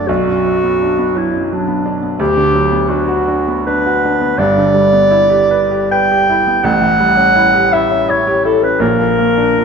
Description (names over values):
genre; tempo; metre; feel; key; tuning
classical, romantic duo for clarinet and grand piano; 71-88 BPM; 3/4; rubato; unclear; A4 = 440 Hz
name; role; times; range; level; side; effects
dark clarinet; melody; 0.0-9.6 s; D4 to G5; -13 LUFS; equal; none
clear concert grand piano; accompaniment; 0.0-9.6 s; G1 to B4; -15 LUFS; right 2 dB; none
room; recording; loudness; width
wet scoring stage reverb, RT60 2.0 s; minimal, uncompressed stereo recording; -11 LUFS; side -6 dB against mid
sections
0.0-9.6 A section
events
none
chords
0.1 Bm; 2.2 Bm/D; 4.4 Em7/G; 6.7 A7; 8.8 Bb